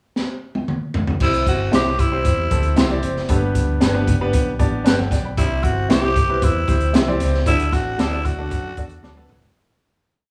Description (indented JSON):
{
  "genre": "uptempo 1960s-style soul",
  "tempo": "115 BPM",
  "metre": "4/4",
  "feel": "straight",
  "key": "unclear",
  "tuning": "A4 = 440 Hz",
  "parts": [
    { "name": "crunchy breakbeat drum kit", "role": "drums", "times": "0.2-9.5 s", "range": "crash cymbal, hi-hat, kick drum, snare drum, toms", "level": "-22 LUFS", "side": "equal", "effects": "none" },
    { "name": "growling tenor saxophone", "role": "melody", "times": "1.2-9.3 s", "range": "E4 to G4", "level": "-25 LUFS", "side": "equal", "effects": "none" },
    { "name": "warm grand piano", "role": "accompaniment", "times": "1.2-9.5 s", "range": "G2 to B5", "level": "-27 LUFS", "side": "equal", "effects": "none" },
    { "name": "fingered electric bass", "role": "bass", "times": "1.2-9.5 s", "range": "F#1 to F#2", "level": "-26 LUFS", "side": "equal", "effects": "none" },
    { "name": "congas", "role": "percussion", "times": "1.2-9.3 s", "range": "none", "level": "-36 LUFS", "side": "equal", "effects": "none" },
    { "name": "electric guitar through a small old amp", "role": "stabs", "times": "1.7-9.1 s", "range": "D4 to D5", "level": "-30 LUFS", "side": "equal", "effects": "spring reverb" }
  ],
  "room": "moderate large studio reverb, RT60 0.8 s",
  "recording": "band playing live in one room, small room ambience",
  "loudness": "-19 LUFS",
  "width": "mono",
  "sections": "0.0-1.2 pickup bar; 1.2-9.6 pre-chorus",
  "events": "drum fill 0.2-1.2, 9.0-9.6; grand piano fill 4.3-5.4; fade-out 7.5-9.6",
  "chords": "0.0 N.C.; 1.2 C; 3.3 G; 5.4 C; 7.5 D"
}